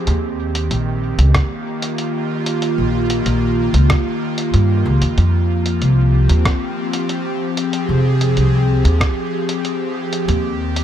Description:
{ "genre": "ambient dub", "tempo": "94 BPM", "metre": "4/4", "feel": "straight", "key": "F minor", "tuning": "A4 = 439 Hz", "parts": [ { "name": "airy breathy pad", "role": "sustained chords", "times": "0.0-10.8 s", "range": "Eb3 to Ab4", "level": "-20 LUFS", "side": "equal", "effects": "chorus" }, { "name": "upright bass", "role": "bass", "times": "0.1-10.8 s", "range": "F1 to G2", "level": "-15 LUFS", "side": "equal", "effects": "none" }, { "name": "lo-fi sampler-style drum kit", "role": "drums", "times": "0.1-10.8 s", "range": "hi-hat, rim click", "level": "-25 LUFS", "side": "equal", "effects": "small room ambience, dub echo" }, { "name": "electronic kick drum", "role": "drums", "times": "1.3-9.1 s", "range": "none", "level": "-19 LUFS", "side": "equal", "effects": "small room ambience" } ], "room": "digital ambience", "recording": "none", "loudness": "-15 LUFS", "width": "side -10 dB against mid", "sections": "0.0-10.8 A section", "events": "none", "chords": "0.1 Ebadd9; 5.2 Fm; 10.3 Ebadd9" }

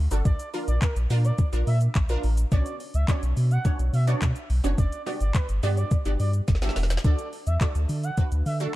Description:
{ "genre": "dance-pop", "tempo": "106 BPM", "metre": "4/4", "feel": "straight", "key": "unclear", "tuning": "A4 = 444 Hz", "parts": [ { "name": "warm sub bass", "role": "bass", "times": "0.0-8.7 s", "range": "E1 to D3", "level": "-23 LUFS", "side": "equal", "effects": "sidechain pumping" }, { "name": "wide unison pluck", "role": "accompaniment", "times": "0.1-8.8 s", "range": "B3 to E5", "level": "-33 LUFS", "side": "right 2 dB", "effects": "lush chorus, sidechain pumping" }, { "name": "smooth R&B drum kit", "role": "drums", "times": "0.1-8.7 s", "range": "handclaps, hi-hat, kick drum, shaker, snare drum", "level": "-25 LUFS", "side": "equal", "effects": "none" }, { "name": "expressive portamento lead", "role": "melody", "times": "0.3-8.6 s", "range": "Bb4 to F#5", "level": "-36 LUFS", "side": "equal", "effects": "chorus, sidechain pumping, dub echo" } ], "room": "little or no reverb", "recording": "dark, warm production", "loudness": "-22 LUFS", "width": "side -16 dB against mid", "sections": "0.0-8.8 A section", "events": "drum fill 6.5-7.0", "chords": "0.3 Bb; 2.5 Bmadd9; 4.8 Gmaj7; 7.0 D" }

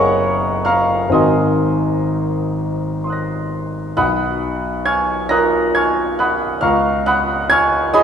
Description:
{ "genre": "classical, impressionist solo piano", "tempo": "41-47 BPM (dotted quarters)", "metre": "6/8", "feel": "rubato", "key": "unclear", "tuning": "A4 = 441 Hz", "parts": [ { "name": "clear concert grand piano", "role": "solo", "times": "0.0-8.0 s", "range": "Gb1 to Bb6", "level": "-14 LUFS", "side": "equal", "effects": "none" } ], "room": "wet recital hall reverb, RT60 1.9 s", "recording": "heard from further back in the room", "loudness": "-15 LUFS", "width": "side -8 dB against mid", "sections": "0.0-8.0 A section", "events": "none", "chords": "0.0 Gb69; 1.1 Ab9; 4.0 Bmaj7#11; 6.6 Db9" }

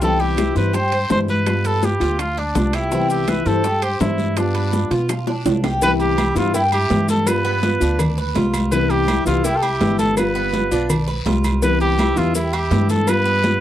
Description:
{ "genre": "latin, Cuban son and guajira", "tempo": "166 BPM", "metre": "4/4", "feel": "straight", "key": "C major", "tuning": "A4 = 440 Hz", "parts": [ { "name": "clear trumpet", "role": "melody", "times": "0.0-13.6 s", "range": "D4 to C5", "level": "-21 LUFS", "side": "right 1 dB", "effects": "none" }, { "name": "nylon-string guitar", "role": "accompaniment", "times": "0.0-13.6 s", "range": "C3 to F4", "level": "-22 LUFS", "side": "left 2 dB", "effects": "none" }, { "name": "Cuban tres", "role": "arpeggios", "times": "0.0-13.6 s", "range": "B3 to C5", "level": "-26 LUFS", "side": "right 1 dB", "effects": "none" }, { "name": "upright bass", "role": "bass", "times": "0.0-13.6 s", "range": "G1 to B2", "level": "-22 LUFS", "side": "right 1 dB", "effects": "none" }, { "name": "bongos and cowbell", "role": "percussion", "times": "0.0-13.6 s", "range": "none", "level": "-29 LUFS", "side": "left 6 dB", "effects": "none" }, { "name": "congas", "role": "percussion", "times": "0.0-13.6 s", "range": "none", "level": "-24 LUFS", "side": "equal", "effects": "none" }, { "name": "guiro", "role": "percussion", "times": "0.0-13.6 s", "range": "none", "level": "-37 LUFS", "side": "left 8 dB", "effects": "none" }, { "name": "maracas", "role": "percussion", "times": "0.0-13.6 s", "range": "none", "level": "-33 LUFS", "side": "left 6 dB", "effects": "none" }, { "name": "claves", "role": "percussion", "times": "0.4-13.3 s", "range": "none", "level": "-35 LUFS", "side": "right 7 dB", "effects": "none" }, { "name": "timbales and agogo bells", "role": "percussion", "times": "0.4-13.6 s", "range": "none", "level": "-28 LUFS", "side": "right 8 dB", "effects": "none" } ], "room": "little or no reverb", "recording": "dry, close 1970s-style studio recording", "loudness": "-16 LUFS", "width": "side -12 dB against mid", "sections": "0.0-5.8 A section; 5.8-13.6 B section", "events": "drum fill 5.1-5.8", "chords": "0.0 Cmaj7; 1.5 G7; 2.9 Cmaj7; 4.4 G7; 5.8 Cmaj7; 7.3 G7; 8.7 Cmaj7; 10.2 G7; 11.6 Cmaj7; 13.1 G7" }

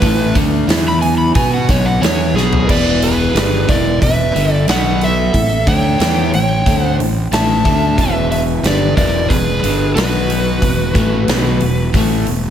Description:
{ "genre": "blues rock power trio and southern rock", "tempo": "90 BPM", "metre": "4/4", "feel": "straight", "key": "unclear", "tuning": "A4 = 440 Hz", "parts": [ { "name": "overdriven slide guitar", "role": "melody", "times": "0.0-11.9 s", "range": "G#4 to B5", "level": "-19 LUFS", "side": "equal", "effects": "slapback echo" }, { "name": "crunchy overdriven guitar", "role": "riff", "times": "0.0-12.5 s", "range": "E2 to B4", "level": "-18 LUFS", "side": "left 1 dB", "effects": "none" }, { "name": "fuzz fingered electric bass", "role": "bass", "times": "0.0-12.5 s", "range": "E1 to B2", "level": "-18 LUFS", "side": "equal", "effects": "overdrive" }, { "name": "big rock drum kit", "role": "drums", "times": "0.0-12.4 s", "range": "crash cymbal, hi-hat, kick drum, snare drum, toms", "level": "-17 LUFS", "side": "equal", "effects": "none" }, { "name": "dark smooth lead guitar", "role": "second line", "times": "2.7-11.9 s", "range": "F#4 to E5", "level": "-24 LUFS", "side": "right 4 dB", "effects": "overdrive, slapback echo" } ], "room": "moderate scoring stage reverb, RT60 2.1 s", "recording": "big arena sound", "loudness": "-12 LUFS", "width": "side -9 dB against mid", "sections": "0.0-2.7 A section; 2.7-12.5 B section", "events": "electric slide guitar solo 0.0-2.7; drum fill 2.3-2.7", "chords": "0.0 Asus24; 0.7 E5; 1.3 B5; 2.7 E7; 4.7 B5; 5.3 A7; 8.0 E7; 10.0 B5; 10.6 E5" }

